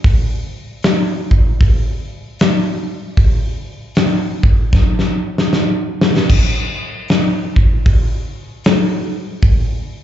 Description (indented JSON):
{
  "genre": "rock",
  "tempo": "77 BPM",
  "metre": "4/4",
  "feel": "swing 62% on 8ths",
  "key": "none",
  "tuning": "none",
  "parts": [
    { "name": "big rock drum kit", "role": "drums", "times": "0.0-9.7 s", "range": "crash cymbal, hi-hat, kick drum, snare drum", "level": "-13 LUFS", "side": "equal", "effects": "none" }
  ],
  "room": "moderate club reverb, RT60 0.8 s",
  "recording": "live gig heard through the venue's PA, club reverb, nothing above 7.7 kHz",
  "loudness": "-13 LUFS",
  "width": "side -11 dB against mid",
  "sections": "0.0-6.3 A section; 6.3-10.0 B section",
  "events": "drum fill 4.7-6.3",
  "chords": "none"
}